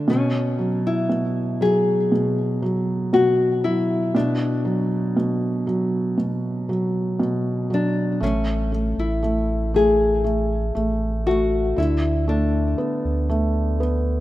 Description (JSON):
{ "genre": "pop ballad", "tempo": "59 BPM", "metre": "4/4", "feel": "straight", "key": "unclear", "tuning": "A4 = 440 Hz", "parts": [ { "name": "felt-muted upright piano", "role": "accompaniment", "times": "0.0-14.2 s", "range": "B2 to B3", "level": "-22 LUFS", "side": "right 1 dB", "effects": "none" }, { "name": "nylon-string guitar", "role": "melody", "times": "0.1-14.2 s", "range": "C#4 to G#4", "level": "-23 LUFS", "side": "left 3 dB", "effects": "digital delay" }, { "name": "warm sub bass", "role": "bass", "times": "8.2-14.2 s", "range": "A1 to D2", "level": "-23 LUFS", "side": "equal", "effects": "none" } ], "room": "light reverb, small room ambience", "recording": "rough home demo mix", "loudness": "-19 LUFS", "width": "side -15 dB against mid", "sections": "0.0-14.2 A section", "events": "none", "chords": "0.1 B5; 8.2 Amaj7; 11.8 D5" }